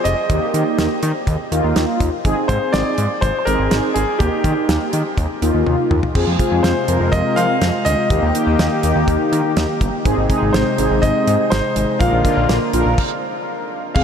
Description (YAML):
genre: synth-pop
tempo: 123 BPM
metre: 4/4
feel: straight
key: unclear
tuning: A4 = 441 Hz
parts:
  - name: clear grand piano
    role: melody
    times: 0.0-14.0 s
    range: G4 to F5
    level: -22 LUFS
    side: left 1 dB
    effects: ping-pong delay
  - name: mellow synth brass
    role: accompaniment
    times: 0.0-14.0 s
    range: Bb3 to Bb4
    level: -20 LUFS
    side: equal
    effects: chorus
  - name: fat analog bass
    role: bass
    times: 0.1-14.0 s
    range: F1 to F3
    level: -20 LUFS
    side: equal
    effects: none
  - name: damped 70s drum kit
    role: drums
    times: 0.1-14.0 s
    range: crash cymbal, hi-hat, kick drum, snare drum, toms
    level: -23 LUFS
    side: equal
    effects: none
  - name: brassy analog pad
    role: sustained chords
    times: 6.2-14.0 s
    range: C3 to G4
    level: -22 LUFS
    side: left 1 dB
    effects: chorus
room: wet huge ambient reverb, RT60 8.5 s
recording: dreamy mix soaked in reverb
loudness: -15 LUFS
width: side -7 dB against mid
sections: 0.0-6.2 A section; 6.2-14.0 B section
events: drum fill 5.7-6.2; stop 13.0-14.0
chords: 0.3 Eb; 2.2 Ab; 4.2 Eb; 6.2 Fm; 8.1 Eb; 10.1 Ab; 12.0 Bb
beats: | 0.30 0.79 1.27 1.76 | 2.25 2.74 3.23 3.71 | 4.20 4.69 5.18 5.66 | 6.15 6.64 7.13 7.62 | 8.10 8.59 9.08 9.57 | 10.05 10.54 11.03 11.52 | 12.01 12.49 12.98 13.47 | 13.96